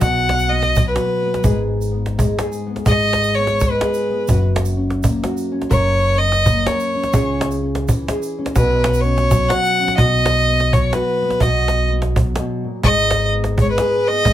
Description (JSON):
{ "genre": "acoustic folk duo or small band", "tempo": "126 BPM", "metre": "3/4", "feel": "swing 58% on 8ths", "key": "B major", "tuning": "A4 = 438 Hz", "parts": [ { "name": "rich fiddle", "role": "melody", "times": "0.0-14.3 s", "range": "B4 to F#5", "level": "-18 LUFS", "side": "equal", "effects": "none" }, { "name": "nylon-string guitar", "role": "accompaniment", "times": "0.0-14.3 s", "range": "F#2 to A#4", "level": "-22 LUFS", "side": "left 1 dB", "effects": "none" }, { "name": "upright bass", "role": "bass", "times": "0.0-14.3 s", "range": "F#1 to C#2", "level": "-20 LUFS", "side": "equal", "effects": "none" }, { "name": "cajon", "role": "percussion", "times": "0.0-14.3 s", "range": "none", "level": "-19 LUFS", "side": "right 1 dB", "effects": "none" }, { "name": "tube shaker", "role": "percussion", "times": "0.0-9.8 s", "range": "none", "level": "-34 LUFS", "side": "right 4 dB", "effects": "none" } ], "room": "moderate small room reverb, RT60 0.5 s", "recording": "none", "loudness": "-15 LUFS", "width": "side -12 dB against mid", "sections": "0.0-10.0 A section; 10.0-14.3 B section", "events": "fiddle solo 0.0-10.0", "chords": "0.0 B5; 1.4 G#m; 4.3 F#; 7.1 C#m; 8.6 Bsus2; 10.0 B; 12.8 G#m", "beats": "| 0.02 0.49 0.97 | 1.44 1.92 2.39 | 2.87 3.34 3.81 | 4.29 4.76 5.24 | 5.71 6.19 6.66 | 7.14 7.61 8.09 | 8.56 9.04 9.51 | 9.99 10.46 10.94 | 11.41 11.89 12.37 | 12.84 13.31 13.79 | 14.26" }